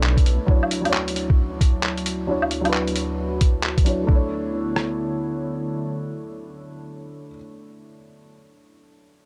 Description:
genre	future garage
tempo	133 BPM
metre	4/4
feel	swing 62% on 16ths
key	B minor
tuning	A4 = 440 Hz
part	felt-muted upright piano	accompaniment	0.0-9.3 s	F#3 to D5	-30 LUFS	equal	vintage 12-bit sampler grit, sidechain pumping, low-pass filter, analog delay
part	warbly tape-like pad	sustained chords	0.0-7.3 s	D2 to C#5	-32 LUFS	equal	chorus, built-in reverb, sidechain pumping
part	lo-fi sampler-style drum kit	drums	0.0-4.0 s	handclaps, hi-hat, woodblock	-27 LUFS	equal	none
part	lo-fi sampler-style drum kit	drums	0.2-4.9 s	kick drum, rim click	-20 LUFS	equal	none
room	little or no reverb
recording	dark, warm production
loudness	-22 LUFS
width	mono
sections	0.0-4.1 A section; 4.1-7.7 B section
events	filter sweep on felt piano 0.0-4.1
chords	0.5 Dmaj9; 4.1 Bm11

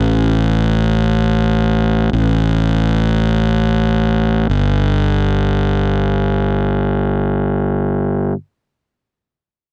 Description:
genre	rock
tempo	free time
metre	none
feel	none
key	unclear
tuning	A4 = 441 Hz
part	fuzz fingered electric bass	bass	0.0-8.3 s	G1 to A1	-16 LUFS	equal	overdrive
room	little or no reverb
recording	none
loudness	-16 LUFS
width	mono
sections	0.0-4.5 A section; 4.5-6.9 B section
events	none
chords	none

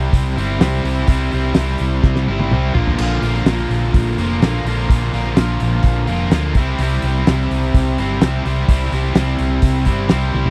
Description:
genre	classic rock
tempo	126 BPM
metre	4/4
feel	straight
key	C mixolydian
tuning	A4 = 440 Hz
part	distorted electric guitar	riff	0.0-10.5 s	Bb2 to F4	-22 LUFS	equal	distortion
part	hollow-body short-scale fingered electric bass	bass	0.0-10.5 s	F1 to D2	-21 LUFS	equal	none
part	cloth-damped thuddy drum kit	drums	0.1-10.5 s	crash cymbal, hi-hat, kick drum, snare drum, splash cymbal, toms	-17 LUFS	equal	none
room	little or no reverb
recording	dry, close 1970s-style studio recording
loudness	-17 LUFS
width	mono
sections	0.0-10.5 A section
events	drum fill 2.0-3.0, 10.3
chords	0.0 C; 2.8 Bb; 6.6 C

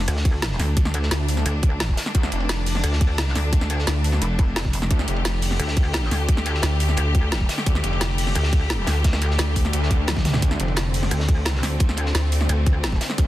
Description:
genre	dark technical drum and bass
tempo	174 BPM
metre	4/4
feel	straight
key	D minor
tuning	A4 = 440 Hz
part	bright studio string section	sustained chords	0.0-13.3 s	D3 to G4	-29 LUFS	left 1 dB	sidechain pumping
part	wide detuned saw bass	bass	0.0-13.3 s	F1 to D2	-22 LUFS	equal	chorus, tube saturation, sidechain pumping
part	pulsing pluck wobble bass	bass	0.1-13.0 s	F1 to D2	-22 LUFS	equal	chorus, tube saturation
part	crunchy breakbeat drum kit	drums	0.1-13.3 s	hi-hat, ride cymbal, snare drum	-33 LUFS	equal	high-pass filter on cymbals, high-pass filter on hats, high-pass filter on snare, high-pass filter on room
part	drum and bass drum kit	drums	0.1-13.3 s	hi-hat, snare drum, toms	-27 LUFS	equal	none
part	electronic kick drum	drums	0.3-13.3 s	none	-19 LUFS	equal	none
part	noise sweep	sound effects	9.7-10.4 s	none	-44 LUFS	right 5 dB	none
room	small room ambience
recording	dense, heavily limited modern master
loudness	-19 LUFS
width	side -15 dB against mid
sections	0.0-13.3 A section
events	drum fill 10.1-10.4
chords	0.0 D5

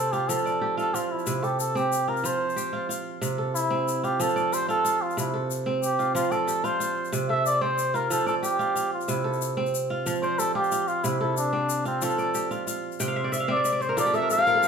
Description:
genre	west african traditional, West African string and xylophone music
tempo	123 BPM (dotted quarters)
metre	12/8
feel	straight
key	C major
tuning	A4 = 440 Hz
part	trumpet with cup mute	melody	0.0-14.7 s	C4 to F5	-25 LUFS	equal	none
part	kora	arpeggios	0.0-14.7 s	C3 to G5	-27 LUFS	right 2 dB	none
part	egg shaker	percussion	0.1-14.7 s	none	-35 LUFS	left 8 dB	none
room	moderate large studio reverb, RT60 1.2 s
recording	band playing live in one room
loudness	-23 LUFS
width	side -6 dB against mid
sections	0.0-3.2 A section; 3.2-14.7 B section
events	muted trumpet solo 3.2-14.7; kora fill 13.0-14.7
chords	0.3 F; 1.3 C5; 2.2 F5; 3.2 C; 4.2 F; 5.2 C5; 6.2 F; 7.1 Csus2; 8.1 F69; 9.1 C; 10.1 F69; 11.0 C69; 12.0 F; 13.0 Cadd9; 14.0 N.C.

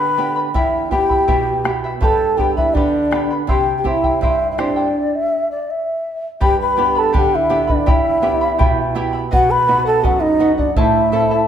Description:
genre	andean folk, Andean ensemble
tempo	82 BPM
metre	2/4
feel	straight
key	unclear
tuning	A4 = 440 Hz
part	mellow hollow large quena	melody	0.0-11.5 s	D5 to B5	-18 LUFS	left 1 dB	none
part	breathy mellow large quena	second line	0.0-11.5 s	D4 to B4	-20 LUFS	right 1 dB	none
part	charango	accompaniment	0.0-11.5 s	E4 to B5	-23 LUFS	right 1 dB	none
part	flamenco guitar	accompaniment	0.0-11.5 s	E2 to A4	-23 LUFS	right 5 dB	none
part	bombo	percussion	0.6-10.9 s	none	-21 LUFS	equal	none
room	moderate concert hall reverb, RT60 1.7 s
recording	minimal, uncompressed stereo recording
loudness	-14 LUFS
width	side -9 dB against mid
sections	0.0-6.4 A section; 6.4-11.5 B section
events	stop 5.0-6.4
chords	0.0 G; 0.5 Em; 2.0 G; 3.5 C; 5.0 N.C.; 6.4 G; 7.9 Em; 9.3 B; 10.8 Am

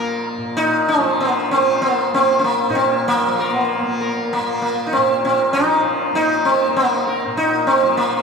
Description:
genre	indian classical, Hindustani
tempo	97 BPM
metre	4/4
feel	straight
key	unclear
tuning	A4 = 440 Hz
part	sitar	melody	0.0-8.2 s	Bb3 to Bb4	-16 LUFS	equal	none
part	tanpura	drone	0.0-8.2 s	Bb2 to Bb3	-25 LUFS	equal	none
room	wet cathedral reverb, RT60 5.1 s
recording	recorded in a church or concert hall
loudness	-15 LUFS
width	side -5 dB against mid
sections	0.0-8.2 A section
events	none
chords	none

